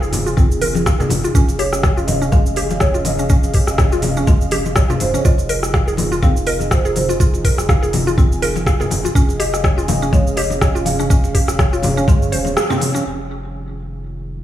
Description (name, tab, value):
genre	afro house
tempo	123 BPM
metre	4/4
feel	swing 56% on 16ths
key	F minor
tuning	A4 = 439 Hz
part	marimba with medium mallets	melody	0.0-12.8 s	C5 to Ab5	-25 LUFS	right 2 dB	tape echo
part	dark analog pad	sustained chords	0.0-14.4 s	Db4 to F5	-25 LUFS	right 2 dB	chorus, sidechain pumping
part	mallet-like synth pluck	arpeggios	0.0-13.0 s	Ab3 to F5	-23 LUFS	equal	chorus, sidechain pumping, tape echo
part	warm sub bass	bass	0.0-14.4 s	Eb1 to G1	-23 LUFS	equal	sidechain pumping
part	afro-pop drum kit	drums	0.0-14.4 s	cabasa, crash cymbal, hi-hat, rim click	-23 LUFS	equal	low-pass filter on perc, studio reverb, low-pass filter on snare, low-pass filter on hats, low-pass filter on cymbals
part	congas	percussion	0.1-13.0 s	none	-23 LUFS	left 3 dB	none
part	electronic kick drum	drums	0.4-12.2 s	none	-14 LUFS	equal	studio reverb
room	light reverb, digital ambience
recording	small room reverb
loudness	-14 LUFS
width	side -12 dB against mid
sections	0.0-13.1 A section; 13.1-14.4 B section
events	band accent 12.6; filter sweep on analog synth pad 13.1-14.4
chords	0.0 Fm7; 1.3 Dbadd9/F; 5.3 Fm7; 9.2 Dbadd9/F; 13.1 Fm7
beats	0.37 0.86 | 1.35 1.84 2.32 2.81 | 3.30 3.79 4.28 4.76 | 5.25 5.74 6.23 6.71 | 7.20 7.69 8.18 8.67 | 9.15 9.64 10.13 10.62 | 11.11 11.59 12.08 12.57 | 13.06 13.54 14.03